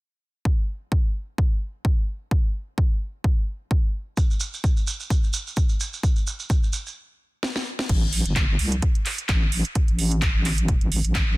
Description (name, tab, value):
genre	bass house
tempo	129 BPM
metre	4/4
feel	swing 55% on 16ths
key	A minor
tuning	A4 = 440 Hz
part	electronic kick drum	drums	0.5-11.3 s	none	-21 LUFS	equal	none
part	maracas	percussion	4.2-6.9 s	none	-30 LUFS	right 4 dB	none
part	house drum kit	drums	7.4-11.3 s	crash cymbal, handclaps, hi-hat, snare drum	-26 LUFS	right 1 dB	none
part	wobble bass	bass	7.9-11.4 s	G1 to C2	-23 LUFS	equal	chorus, tube saturation, sidechain pumping
room	digital ambience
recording	dense, heavily limited modern master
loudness	-21 LUFS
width	side -21 dB against mid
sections	0.5-7.9 A section; 7.9-11.4 B section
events	stop 7.0-7.9; drum fill 7.4-7.9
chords	none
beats	| 0.45 0.92 1.38 1.85 | 2.31 2.78 3.24 3.71 | 4.17 4.64 5.10 5.57 | 6.03 6.50 6.96 7.43 | 7.89 8.36 8.82 9.29 | 9.76 10.22 10.69 11.15